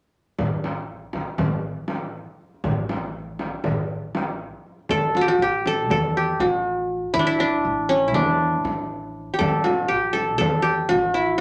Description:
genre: Turkish makam ensemble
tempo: 240 BPM (eighths)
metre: 9/8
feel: straight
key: A makam hicaz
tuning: A4 = 438 Hz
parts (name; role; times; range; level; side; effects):
- upright bass; bass; 0.4-11.4 s; A1 to E2; -35 LUFS; equal; none
- darbuka; percussion; 0.4-4.8 s; none; -33 LUFS; equal; none
- frame drum; percussion; 0.4-11.0 s; none; -30 LUFS; equal; none
- qanun; melody; 4.9-11.4 s; C#4 to A4; -22 LUFS; equal; none
room: wet studio reverb, RT60 0.6 s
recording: none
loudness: -23 LUFS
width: mono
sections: 0.4-4.9 A section; 4.9-11.4 B section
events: none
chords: none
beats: | 0.40 0.65 0.90 1.15 1.40 1.65 1.90 2.15 2.40 | 2.65 2.90 3.15 3.40 3.65 3.90 4.15 4.40 4.65 | 4.90 5.15 5.40 5.65 5.90 6.15 6.40 6.65 6.90 | 7.15 7.40 7.65 7.90 8.15 8.40 8.65 8.90 9.15 | 9.40 9.64 9.89 10.14 10.39 10.64 10.89 11.14 11.39

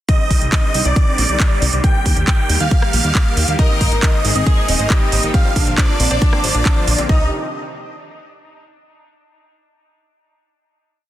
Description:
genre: uplifting trance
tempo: 137 BPM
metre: 4/4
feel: straight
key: C minor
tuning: A4 = 441 Hz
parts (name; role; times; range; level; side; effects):
- big supersaw lead; melody; 0.1-7.3 s; D5 to G5; -22 LUFS; right 1 dB; phaser, cassette tape, sidechain pumping, tape echo
- warm grand piano; second line; 0.1-7.3 s; D5 to G5; -32 LUFS; equal; none
- filtered supersaw swell; sustained chords; 0.1-7.3 s; Ab2 to G4; -25 LUFS; right 1 dB; sidechain pumping
- electronic kick drum; drums; 0.1-7.2 s; none; -15 LUFS; equal; none
- house drum kit; drums; 0.1-7.1 s; handclaps, hi-hat, rim click; -21 LUFS; right 2 dB; sidechain pumping on hats
- plucky analog bass; bass; 0.3-7.3 s; Eb1 to Eb2; -18 LUFS; equal; sidechain pumping
- warm symphonic violin section; second line; 3.6-7.3 s; G3 to Bb4; -26 LUFS; left 1 dB; dub echo
- analog pluck; arpeggios; 3.6-7.3 s; C4 to C5; -28 LUFS; left 4 dB; chorus, sidechain pumping, tape echo
room: little or no reverb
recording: dense, heavily limited modern master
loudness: -13 LUFS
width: side -13 dB against mid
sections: 0.1-7.1 drop; 7.1-8.8 final chord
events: drop 0.1-7.1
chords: 0.1 Cmadd9; 1.8 Eb; 3.6 Absus2; 5.3 Bb; 7.1 Cmadd9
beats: | 0.09 0.52 0.96 1.40 | 1.84 2.28 2.71 3.15 | 3.59 4.03 4.47 4.90 | 5.34 5.78 6.22 6.66 | 7.09

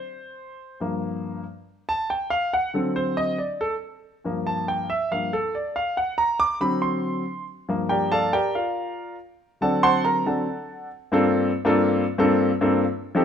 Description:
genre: jazz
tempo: 140 BPM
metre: 4/4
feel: straight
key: unclear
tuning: A4 = 441 Hz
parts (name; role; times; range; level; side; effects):
- warm grand piano; solo; 0.0-13.2 s; G2 to D6; -21 LUFS; equal; none
room: light reverb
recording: minimal, uncompressed stereo recording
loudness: -21 LUFS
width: side -8 dB against mid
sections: 0.0-11.1 A section; 11.1-13.2 B section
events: grand piano solo 0.0-11.1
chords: 0.0 N.C.; 0.8 Gm7; 2.5 D7; 4.2 Gm7; 6.0 D7; 7.7 Gm9; 9.4 D7; 11.1 Gm11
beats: 0.38 | 0.81 1.24 1.67 2.10 | 2.53 2.96 3.39 3.82 | 4.25 4.68 5.11 5.54 | 5.96 6.39 6.82 7.25 | 7.68 8.11 8.54 8.97 | 9.40 9.83 10.26 10.69 | 11.12 11.54 11.97 12.40 | 12.84

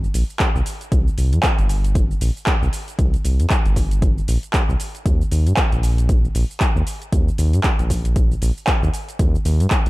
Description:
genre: deep house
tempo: 116 BPM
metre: 4/4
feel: swing 58% on 16ths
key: C minor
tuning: A4 = 439 Hz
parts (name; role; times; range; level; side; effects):
- round analog bass; bass; 0.0-9.9 s; G1 to G2; -18 LUFS; equal; tube saturation, sidechain pumping
- deep house drum kit; drums; 0.0-9.9 s; handclaps, hi-hat, shaker; -25 LUFS; right 1 dB; overdrive, small room ambience
- electronic kick drum; drums; 0.4-9.8 s; none; -19 LUFS; equal; overdrive, small room ambience
room: little or no reverb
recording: none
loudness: -16 LUFS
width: side -19 dB against mid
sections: 0.0-9.9 A section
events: none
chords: none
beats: 0.40 | 0.92 1.44 1.95 2.47 | 2.99 3.50 4.02 4.54 | 5.06 5.57 6.09 6.61 | 7.12 7.64 8.16 8.68 | 9.19 9.71

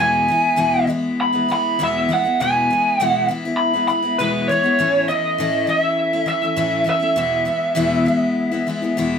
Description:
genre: rock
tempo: 100 BPM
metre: 4/4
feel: straight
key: E major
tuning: A4 = 440 Hz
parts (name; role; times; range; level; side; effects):
- lead guitar through a small cranked amp; melody; 0.0-8.9 s; B4 to B5; -18 LUFS; right 1 dB; overdrive
- picked steel-string acoustic guitar; accompaniment; 0.0-9.2 s; E2 to E4; -20 LUFS; left 3 dB; none
room: moderate studio ambience, RT60 0.5 s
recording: band playing live in one room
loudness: -16 LUFS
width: side -7 dB against mid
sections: 0.0-9.2 A section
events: none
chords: 0.0 E; 4.8 A; 7.2 E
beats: 0.59 1.18 1.78 | 2.38 2.98 3.58 4.17 | 4.77 5.37 5.97 6.57 | 7.17 7.77 8.37 8.97

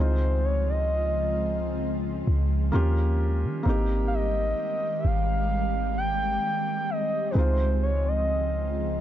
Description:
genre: R&B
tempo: 65 BPM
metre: 4/4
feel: swing 54% on 16ths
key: Ab major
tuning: A4 = 442 Hz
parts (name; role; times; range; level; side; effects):
- gliding portamento lead; melody; 0.0-9.0 s; Cb5 to G5; -28 LUFS; right 1 dB; chorus, tape echo
- felt-muted upright piano; accompaniment; 0.0-9.0 s; Ab3 to G4; -33 LUFS; equal; none
- ethereal airy pad; sustained chords; 0.0-9.0 s; Db3 to G4; -32 LUFS; equal; ensemble chorus, built-in reverb
- clean 808-style bass; bass; 0.0-9.0 s; Ab1 to Eb3; -25 LUFS; equal; none
room: little or no reverb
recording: dry, gritty hardware recording, transformer saturation, nothing above 7.9 kHz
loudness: -23 LUFS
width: side -12 dB against mid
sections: 0.0-9.0 A section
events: none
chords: 0.0 Dbmaj7; 2.7 Eb7; 3.7 Abmaj7; 7.3 Dbmaj7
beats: 0.89 1.81 2.73 | 3.66 4.58 5.50 6.43 | 7.35 8.27

